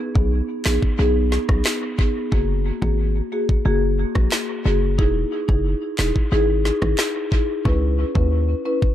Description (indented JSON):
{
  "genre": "dancehall",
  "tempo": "90 BPM",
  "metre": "4/4",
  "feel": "straight",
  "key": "B major",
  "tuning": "A4 = 440 Hz",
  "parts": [
    { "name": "marimba with medium mallets", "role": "accompaniment", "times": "0.1-8.9 s", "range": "A#3 to B4", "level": "-23 LUFS", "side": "left 1 dB", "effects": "sidechain pumping, dub echo" },
    { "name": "hard-hitting 808-style bass", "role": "bass", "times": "0.2-8.5 s", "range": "E1 to D#2", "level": "-20 LUFS", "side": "equal", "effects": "none" },
    { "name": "island pop drum kit", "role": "drums", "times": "0.2-8.9 s", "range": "handclaps, kick drum, rim click, snare drum", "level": "-21 LUFS", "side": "equal", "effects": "dub echo" }
  ],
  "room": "light reverb",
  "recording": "echo-heavy mix",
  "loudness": "-18 LUFS",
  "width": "side -12 dB against mid",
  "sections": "0.0-8.9 A section",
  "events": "none",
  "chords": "0.0 B6; 2.3 F#add9; 5.0 Emaj7; 7.7 C#m7"
}